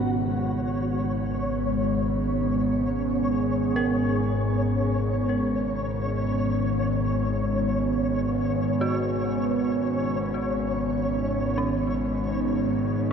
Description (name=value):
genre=dark ambient drone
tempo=free time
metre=none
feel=none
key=G# minor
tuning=A4 = 440 Hz
part: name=deep dark ambient pad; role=sustained chords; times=0.0-13.1 s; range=B3 to G#4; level=-27 LUFS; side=right 3 dB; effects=chorus, built-in reverb, shimmer reverb
part: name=bowed-like drone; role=drone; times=0.0-13.1 s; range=G#1 to G#2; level=-27 LUFS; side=left 2 dB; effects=built-in reverb
part: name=flickering grainy texture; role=texture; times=0.0-13.1 s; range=C#5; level=-32 LUFS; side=left 1 dB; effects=built-in reverb, shimmer reverb
part: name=dark detuned synth bell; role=arpeggios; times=3.8-13.1 s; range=C#4 to A#4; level=-35 LUFS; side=right 1 dB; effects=chorus, tremolo, ping-pong delay, shimmer reverb
room=wet cathedral reverb, RT60 4.9 s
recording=none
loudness=-23 LUFS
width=side -7 dB against mid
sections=0.0-13.1 A section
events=none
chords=0.0 G#madd9